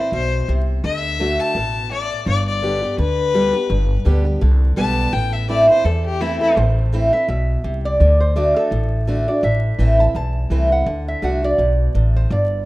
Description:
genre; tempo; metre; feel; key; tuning
bluegrass; 167 BPM; 4/4; swing 56% on 8ths; A dorian; A4 = 440 Hz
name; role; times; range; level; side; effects
clear fiddle; second line; 0.0-6.6 s; E4 to A5; -22 LUFS; left 5 dB; none
picked steel-string acoustic guitar; accompaniment; 0.0-12.7 s; E2 to G4; -21 LUFS; right 1 dB; none
upright bass; bass; 0.1-12.7 s; G1 to E2; -18 LUFS; equal; none
lap resonator guitar; melody; 6.4-12.7 s; A4 to A5; -22 LUFS; right 1 dB; none
room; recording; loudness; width
light reverb, small room ambience; rough home demo mix, vinyl crackle; -15 LUFS; side -18 dB against mid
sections
0.0-6.6 A section; 6.6-12.7 B section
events
fiddle solo 0.0-6.6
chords
0.0 Am (rootless); 0.8 D; 2.3 G; 5.1 Am; 8.0 D; 9.4 Am; 10.9 D

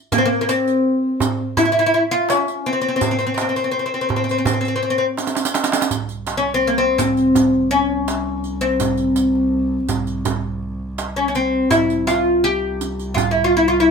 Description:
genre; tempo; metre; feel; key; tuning
Arabic maqam ensemble; 83 BPM; 4/4; straight; C maqam hijaz; A4 = 438 Hz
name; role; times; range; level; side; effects
oud; melody; 0.1-13.9 s; Bb3 to G4; -17 LUFS; left 1 dB; none
darbuka; percussion; 0.1-13.3 s; none; -24 LUFS; right 6 dB; none
riq; percussion; 0.1-13.3 s; none; -25 LUFS; right 8 dB; none
rich double bass; drone; 5.9-13.9 s; C2; -28 LUFS; right 1 dB; none
room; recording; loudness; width
light reverb; none; -16 LUFS; side -5 dB against mid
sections
0.0-5.9 A section; 5.9-13.9 B section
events
drum fill 5.2-5.9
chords
none

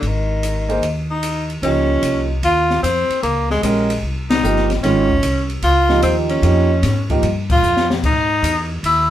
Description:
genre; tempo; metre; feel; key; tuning
modal jazz; 150 BPM; 4/4; swing 67% on 8ths; Db lydian; A4 = 440 Hz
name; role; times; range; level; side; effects
clear tenor saxophone; melody; 0.0-9.1 s; Eb3 to F4; -18 LUFS; equal; none
upright bass; bass; 0.0-9.1 s; G1 to Ab2; -20 LUFS; equal; none
open jazz drum kit; drums; 0.0-9.0 s; crash cymbal, hi-hat, kick drum, ride cymbal, snare drum; -24 LUFS; left 2 dB; none
warm concert grand piano; accompaniment; 0.7-7.2 s; Eb3 to C5; -19 LUFS; right 3 dB; none
room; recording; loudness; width
moderate studio reverb, RT60 0.5 s; band playing live in one room; -15 LUFS; side -12 dB against mid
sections
0.0-1.6 A section; 1.6-9.1 B section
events
band accent 4.2, 7.4; drum fill 7.6-8.0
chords
0.0 Ab5; 1.6 Dbmaj9; 8.0 Emaj7

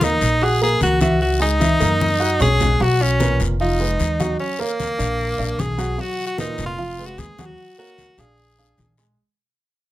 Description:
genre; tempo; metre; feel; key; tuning
Afro-Cuban jazz; 151 BPM; 4/4; straight; unclear; A4 = 440 Hz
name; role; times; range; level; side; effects
bright tenor saxophone; melody; 0.0-9.0 s; A#3 to Ab4; -21 LUFS; equal; none
dark baby grand piano; accompaniment; 0.0-9.1 s; Bb2 to Gb6; -25 LUFS; right 2 dB; none
upright bass; bass; 0.0-9.1 s; F1 to Gb2; -22 LUFS; equal; none
congas; percussion; 0.0-9.2 s; none; -24 LUFS; left 1 dB; none
guiro; percussion; 0.0-9.2 s; none; -33 LUFS; left 7 dB; none
room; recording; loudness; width
moderate club reverb, RT60 0.6 s; none; -17 LUFS; side -15 dB against mid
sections
0.0-2.8 A section; 2.8-9.2 B section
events
drum fill 1.6-2.8; fade-out 2.8-9.2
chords
0.0 Ebm7; 1.2 Dbm; 2.0 Gb69; 2.8 Bsus2; 3.6 Fm7b5; 4.4 Dmaj7#5; 5.2 Bb7; 6.0 B5; 6.8 Fm7b5; 7.6 Bb7alt; 8.4 Bb7

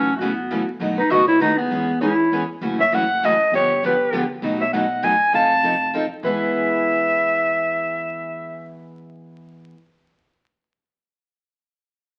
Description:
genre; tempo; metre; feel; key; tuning
acoustic string swing (jazz manouche); 199 BPM; 3/4; swing 59% on 8ths; E major; A4 = 440 Hz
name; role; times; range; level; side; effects
clear clarinet; melody; 0.0-8.8 s; A3 to A5; -21 LUFS; equal; none
picked steel-string acoustic guitar; second line; 0.0-9.5 s; F#4 to F5; -30 LUFS; equal; none
picked steel-string acoustic guitar; accompaniment; 0.0-9.8 s; B2 to A4; -29 LUFS; equal; none
picked steel-string acoustic guitar; accompaniment; 0.0-9.8 s; B2 to C#5; -35 LUFS; equal; none
upright bass; bass; 0.0-9.5 s; F1 to F#2; -37 LUFS; equal; none
room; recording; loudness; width
moderate large studio reverb, RT60 1.2 s; very old 78 rpm record, vinyl crackle; -20 LUFS; mono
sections
0.0-2.6 A section; 2.6-6.2 B section; 6.2-8.0 C section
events
none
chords
0.0 F#m7; 0.8 B7; 1.7 E6; 2.6 F#m7; 3.5 G7; 4.4 B6; 5.3 F7; 6.2 E

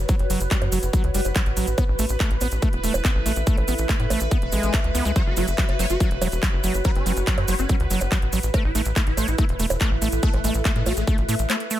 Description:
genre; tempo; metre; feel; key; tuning
psychedelic trance; 142 BPM; 4/4; straight; F# minor; A4 = 441 Hz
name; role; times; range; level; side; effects
bubbling stepped-filter texture; sustained chords; 0.0-11.8 s; B4; -33 LUFS; right 3 dB; chorus, built-in reverb, sidechain pumping
tight sequencer bass; bass; 0.0-11.5 s; E1 to A2; -24 LUFS; equal; none
warbly tape-like pad; texture; 0.0-11.8 s; E4 to F#5; -32 LUFS; left 1 dB; chorus, built-in reverb, phaser, sidechain pumping
overdriven acid bass; riff; 0.1-11.8 s; F#3 to B3; -29 LUFS; right 2 dB; distortion, auto-pan, sidechain pumping, tape echo
big-room dance drum kit; drums; 0.1-11.8 s; bongos, handclaps, hi-hat; -29 LUFS; right 1 dB; none
electronic kick drum; drums; 0.1-11.2 s; none; -22 LUFS; equal; none
cabasa; percussion; 0.1-11.8 s; none; -33 LUFS; right 3 dB; none
swarming rave lead; melody; 5.2-11.1 s; A3 to C#5; -31 LUFS; left 1 dB; chorus, phaser, sidechain pumping, tape echo
room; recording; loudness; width
little or no reverb; none; -19 LUFS; side -13 dB against mid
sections
0.0-11.8 A section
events
none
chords
0.0 F#5; 1.8 A5; 5.2 F#5

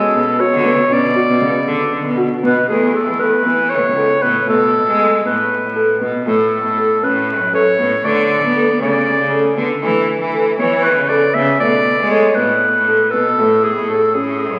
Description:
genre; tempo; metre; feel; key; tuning
contemporary instrumental, chamber music in an uneven meter; 235 BPM (eighths); 7/8; straight; E mixolydian; A4 = 439 Hz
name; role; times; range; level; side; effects
warm clarinet; melody; 0.0-14.6 s; G#4 to E5; -18 LUFS; equal; none
bright cello; bass; 0.1-14.6 s; C#2 to B3; -21 LUFS; equal; none
felt-muted upright piano; arpeggios; 0.4-14.5 s; C#3 to A4; -20 LUFS; equal; none
room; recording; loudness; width
wet concert hall reverb, RT60 2.1 s; very old 78 rpm record, vinyl crackle; -15 LUFS; mono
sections
0.0-2.7 A section; 2.7-14.6 B section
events
none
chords
0.0 Bmadd9; 2.7 Esus4; 4.5 Asus2; 6.3 A; 8.0 D5; 9.8 Esus4; 11.6 Bm7; 13.4 A

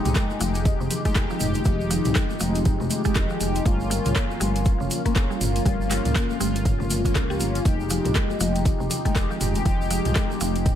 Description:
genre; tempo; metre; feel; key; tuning
afro house; 120 BPM; 4/4; swing 59% on 16ths; F minor; A4 = 440 Hz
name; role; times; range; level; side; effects
ethereal airy pad; sustained chords; 0.0-10.8 s; Db3 to F4; -32 LUFS; right 2 dB; ensemble chorus, built-in reverb, sidechain pumping
mallet-like synth pluck; arpeggios; 0.0-10.5 s; C3 to G4; -30 LUFS; equal; chorus, sidechain pumping, ping-pong delay
mellow synth brass; stabs; 0.0-10.8 s; Ab3 to G4; -28 LUFS; left 4 dB; chorus, phaser, sidechain pumping, ping-pong delay
congas; percussion; 0.0-10.6 s; none; -34 LUFS; left 4 dB; none
smooth synth bass; bass; 0.1-10.7 s; F1 to Db2; -27 LUFS; equal; sidechain pumping
deep house drum kit; drums; 0.1-10.8 s; handclaps, hi-hat, rim click, toms; -29 LUFS; right 1 dB; overdrive
tube shaker; percussion; 0.1-10.8 s; none; -37 LUFS; right 4 dB; none
electronic kick drum; drums; 0.2-10.8 s; none; -23 LUFS; equal; overdrive
room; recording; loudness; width
digital ambience; none; -20 LUFS; side -10 dB against mid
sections
0.0-10.8 A section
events
none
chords
0.0 Fm7; 3.7 Gm7b5; 7.7 Fm7

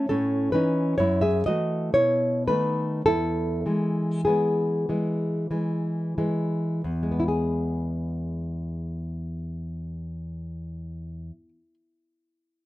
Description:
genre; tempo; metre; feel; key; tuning
romantic piece for solo classical guitar; 43-70 BPM; 3/4; rubato; E major; A4 = 440 Hz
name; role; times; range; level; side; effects
nylon-string guitar; solo; 0.0-11.7 s; E2 to E5; -24 LUFS; equal; none
room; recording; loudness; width
light reverb; none; -23 LUFS; side -16 dB against mid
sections
0.0-6.8 A section; 6.8-10.7 B section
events
slowing down 0.0-6.8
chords
0.1 A; 1.0 F#m7; 1.9 B7; 3.0 E

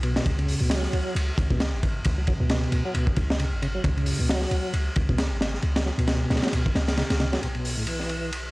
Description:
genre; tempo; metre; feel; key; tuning
breakbeat, breaks; 134 BPM; 4/4; swing 56% on 16ths; unclear; A4 = 441 Hz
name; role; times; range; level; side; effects
tonewheel organ; riff; 0.0-8.3 s; A2 to F#3; -29 LUFS; equal; chorus vibrato, slow rotary speaker, vintage 12-bit sampler grit, low-pass filter, analog delay
warm 808-style bass; bass; 0.0-8.5 s; G#1 to C#2; -26 LUFS; equal; none
crunchy breakbeat drum kit; drums; 0.0-8.4 s; hi-hat, kick drum, ride cymbal, snare drum; -26 LUFS; equal; high-pass filter on kick, high-pass filter on cymbals, high-pass filter on hats, high-pass filter on snare, high-pass filter on room
room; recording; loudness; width
little or no reverb; dry, gritty hardware recording, cassette tape; -22 LUFS; side -22 dB against mid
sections
0.0-7.4 A section; 7.4-8.5 B section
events
none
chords
0.3 C#7sus4; 7.4 B7sus4

